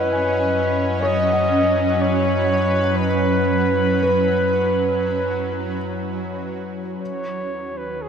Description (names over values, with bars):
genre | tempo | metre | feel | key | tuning
ambient | free time | none | none | unclear | A4 = 441 Hz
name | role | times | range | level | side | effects
mellow flugelhorn | melody | 0.0-8.1 s | G#4 to D#5 | -22 LUFS | equal | tape echo
shimmering ambient pad | sustained chords | 0.0-8.1 s | D#3 to B4 | -22 LUFS | right 1 dB | chorus, built-in reverb
felt-muted upright piano | arpeggios | 0.0-7.0 s | B4 to G#5 | -27 LUFS | equal | none
warm sub bass | bass | 0.0-8.1 s | D#2 to F#2 | -27 LUFS | left 1 dB | none
room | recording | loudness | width
wet cathedral reverb, RT60 5.1 s | in a vast, echoing space | -18 LUFS | side -7 dB against mid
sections
0.0-8.1 A section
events
fade-out 4.3-8.1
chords
0.0 F#7sus4; 7.0 D#m7